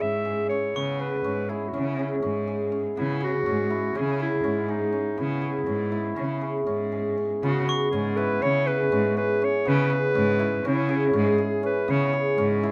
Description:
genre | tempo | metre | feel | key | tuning
contemporary instrumental, chamber music in an uneven meter | 243 BPM (eighths) | 9/8 | straight | C# minor | A4 = 441 Hz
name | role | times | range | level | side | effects
warm clarinet | melody | 0.0-12.6 s | D#4 to E5 | -30 LUFS | equal | none
hammered dulcimer | arpeggios | 0.0-12.7 s | B3 to G#4 | -29 LUFS | equal | none
rich cello | bass | 0.0-12.7 s | G#2 to C#3 | -30 LUFS | equal | none
glockenspiel with hard plastic mallets | texture | 0.0-2.3, 7.7-9.2 s | C#6 to E6 | -40 LUFS | equal | none
room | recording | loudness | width
little or no reverb | close, detailed microphones | -25 LUFS | mono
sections
0.0-7.4 A section; 7.4-12.7 B section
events
none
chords
0.0 C#m7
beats
0.01 0.26 0.51 | 0.76 1.01 1.26 1.50 1.75 1.99 2.24 2.49 2.73 | 2.98 3.22 3.47 3.71 3.96 4.20 4.45 4.69 4.94 | 5.18 5.43 5.67 5.92 6.17 6.42 6.67 6.93 7.18 | 7.43 7.68 7.93 8.18 8.43 8.68 8.93 9.17 9.42 | 9.67 9.91 10.15 10.40 10.65 10.89 11.14 11.39 11.63 | 11.88 12.13 12.38 12.63

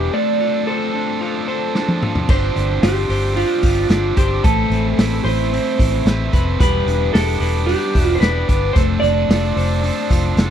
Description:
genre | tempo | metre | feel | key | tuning
jangly indie pop | 111 BPM | 4/4 | straight | G mixolydian | A4 = 440 Hz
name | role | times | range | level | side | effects
electric guitar through a small old amp | melody | 0.0-10.5 s | F4 to D5 | -21 LUFS | right 3 dB | phaser, slapback echo
biting overdriven guitar | accompaniment | 0.0-10.5 s | G2 to B4 | -24 LUFS | right 6 dB | none
electric guitar through a small old amp | arpeggios | 0.0-10.5 s | G3 to C5 | -24 LUFS | left 8 dB | none
vintage muted fingered electric bass | bass | 0.0-10.5 s | E1 to A1 | -20 LUFS | equal | none
raw garage drum kit | drums | 1.8-10.5 s | crash cymbal, hi-hat, kick drum, snare drum, toms | -18 LUFS | equal | none
room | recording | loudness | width
little or no reverb | dry, close 1970s-style studio recording | -15 LUFS | side -9 dB against mid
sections
0.0-2.3 A section; 2.3-10.5 B section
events
drum fill 1.8-2.3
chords
0.1 F6; 2.3 G7sus4; 4.4 Amadd9; 6.6 Em7; 8.8 F6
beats
| 0.13 0.67 1.21 1.75 | 2.29 2.83 3.37 3.90 | 4.44 4.98 5.52 6.06 | 6.60 7.14 7.68 8.22 | 8.76 9.30 9.84 10.38

